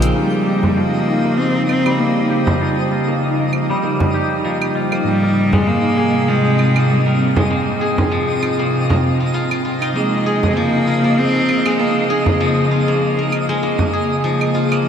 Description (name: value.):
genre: organic downtempo.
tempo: 98 BPM.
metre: 4/4.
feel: swing 55% on 16ths.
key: unclear.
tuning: A4 = 440 Hz.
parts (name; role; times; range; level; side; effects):
tine electric piano; accompaniment; 0.0-14.9 s; Ab2 to G5; -26 LUFS; right 2 dB; none.
ethereal airy pad; sustained chords; 0.0-14.9 s; C3 to G5; -20 LUFS; equal; ensemble chorus, built-in reverb.
steel-string zither; arpeggios; 0.0-14.9 s; F3 to Bb4; -21 LUFS; left 1 dB; low-pass filter, tape echo, shimmer reverb.
electronic hi-hat, shaker and claves; drums; 0.0-14.8 s; none; -31 LUFS; right 6 dB; none.
twinkling granular texture; texture; 0.0-14.9 s; Eb4 to G5; -26 LUFS; equal; built-in reverb, shimmer reverb.
clear cello; melody; 0.2-14.9 s; G3 to C4; -20 LUFS; equal; diffuse ambient delay.
frame drum; percussion; 0.6-13.9 s; none; -24 LUFS; right 1 dB; none.
room: wet huge ambient reverb, RT60 8.7 s.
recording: dreamy mix soaked in reverb.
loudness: -14 LUFS.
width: side -8 dB against mid.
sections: 0.2-14.9 A section.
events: filter sweep on guzheng 0.2-14.9.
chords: 0.2 Eb7; 5.1 Abmaj7; 10.0 Bbm7.